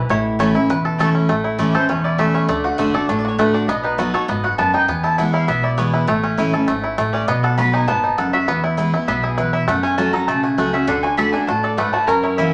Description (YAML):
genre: bluegrass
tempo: 200 BPM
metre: 4/4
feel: straight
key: A major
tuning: A4 = 436 Hz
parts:
  - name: bluegrass banjo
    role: melody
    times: 0.0-12.5 s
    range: E3 to C#5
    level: -24 LUFS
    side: equal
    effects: none
  - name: lap resonator guitar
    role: second line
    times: 0.0-1.1, 10.9-12.5 s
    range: E4 to B4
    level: -27 LUFS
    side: equal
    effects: none
  - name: picked steel-string acoustic guitar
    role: accompaniment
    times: 0.0-12.5 s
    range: E2 to F#4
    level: -22 LUFS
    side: equal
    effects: none
  - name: upright bass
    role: bass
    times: 0.0-12.5 s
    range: E1 to F#2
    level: -34 LUFS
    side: equal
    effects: none
  - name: mandolin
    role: stabs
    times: 0.4-12.5 s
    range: A3 to B5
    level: -24 LUFS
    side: equal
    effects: none
room: wet club reverb, RT60 0.6 s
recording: none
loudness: -18 LUFS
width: mono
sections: 0.0-1.3 A section; 1.3-12.5 A section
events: five-string banjo solo 0.0-1.3; mandolin solo 1.3-12.5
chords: 0.1 A; 2.5 D; 3.7 B; 4.9 E; 6.1 A; 7.3 B; 8.5 E; 9.7 F#m; 10.9 D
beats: | 0.10 0.40 0.69 0.99 | 1.29 1.59 1.89 2.19 | 2.49 2.79 3.09 3.39 | 3.69 3.98 4.28 4.58 | 4.88 5.18 5.48 5.78 | 6.08 6.38 6.68 6.98 | 7.28 7.58 7.88 8.18 | 8.48 8.78 9.08 9.38 | 9.68 9.98 10.28 10.58 | 10.88 11.18 11.48 11.78 | 12.08 12.38